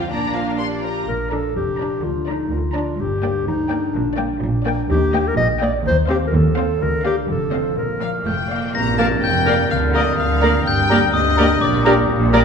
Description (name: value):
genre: cinematic, playful, whimsical film cue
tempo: 125 BPM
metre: 2/4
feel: straight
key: Bb major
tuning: A4 = 440 Hz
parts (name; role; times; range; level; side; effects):
- warm studio violin section; melody; 0.0-12.4 s; D5 to C6; -28 LUFS; left 4 dB; none
- rich studio violin section; second line; 0.0-11.9 s; D4 to Bb5; -27 LUFS; left 4 dB; none
- warm studio viola section; accompaniment; 0.0-12.4 s; A3 to Bb4; -26 LUFS; right 2 dB; none
- concert harp; arpeggios; 0.0-12.4 s; G2 to Eb5; -27 LUFS; left 4 dB; none
- warm studio double bass section; bass; 0.0-12.4 s; F1 to Eb2; -23 LUFS; right 2 dB; none
- warm studio cello section; bass; 0.1-12.4 s; D2 to Bb3; -26 LUFS; right 3 dB; none
- dark clarinet; second line; 0.3-12.4 s; D4 to Eb5; -23 LUFS; left 1 dB; none
- cymbal swell and tam-tam; percussion; 6.8-10.6 s; none; -28 LUFS; equal; none
- glockenspiel with soft plastic mallets; melody; 8.0-11.8 s; D6 to Bb6; -22 LUFS; left 5 dB; none
- dark French horn section; sustained chords; 8.7-12.4 s; Bb3 to Bb4; -26 LUFS; left 1 dB; none
- silver concert flute; second line; 9.0-12.4 s; F5 to Bb5; -26 LUFS; right 1 dB; none
- warm oboe; second line; 9.0-12.4 s; Bb4; -26 LUFS; right 1 dB; none
- mellow bassoon; accompaniment; 9.0-12.4 s; G3 to Bb3; -26 LUFS; right 1 dB; none
room: wet scoring stage reverb, RT60 1.6 s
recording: minimal, uncompressed stereo recording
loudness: -16 LUFS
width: side -6 dB against mid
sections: 0.0-1.1 A section; 1.1-8.7 A section; 8.7-12.4 B section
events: band accent 8.7-9.2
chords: 0.1 Bb; 2.0 Bb/D; 3.0 Gm; 3.9 Gm/Bb; 4.9 Eb; 5.9 F7/Eb; 6.8 Bb/D; 7.3 F7; 7.8 Bb; 9.7 Bb/D; 10.7 Gm; 11.6 Gm/Bb